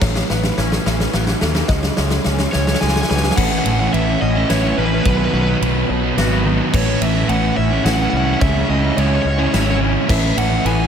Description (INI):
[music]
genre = post-rock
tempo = 107 BPM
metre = 3/4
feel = straight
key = A lydian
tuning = A4 = 439 Hz
[part]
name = felt-muted upright piano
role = arpeggios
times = 0.0-10.9 s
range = A4 to D#5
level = -30 LUFS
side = right 4 dB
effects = analog delay
[part]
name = twangy electric guitar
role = arpeggios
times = 0.0-10.9 s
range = A2 to F#4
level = -27 LUFS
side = left 2 dB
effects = analog chorus, analog delay
[part]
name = fuzz fingered electric bass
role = bass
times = 0.0-10.9 s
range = G#1 to D#2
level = -20 LUFS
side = equal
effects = overdrive
[part]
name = huge arena drum kit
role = drums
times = 0.0-10.8 s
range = crash cymbal, kick drum, ride cymbal, snare drum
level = -21 LUFS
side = equal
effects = none
[part]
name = crunchy overdriven guitar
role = melody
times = 2.5-10.9 s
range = B4 to G#5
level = -22 LUFS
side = right 1 dB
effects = analog delay
[part]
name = fuzz guitar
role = riff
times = 3.4-10.9 s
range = A2 to F#4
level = -18 LUFS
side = right 1 dB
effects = distortion
[sound]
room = moderate huge ambient reverb, RT60 8.9 s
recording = dreamy mix soaked in reverb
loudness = -14 LUFS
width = side -8 dB against mid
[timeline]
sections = 0.0-3.4 A section; 3.4-10.9 B section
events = build-up 0.0-3.4; drum fill 0.0-3.4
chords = 0.0 Aadd9; 1.7 C#m; 3.4 Aadd9; 5.0 B; 6.7 Aadd9; 8.4 C#m; 10.1 Aadd9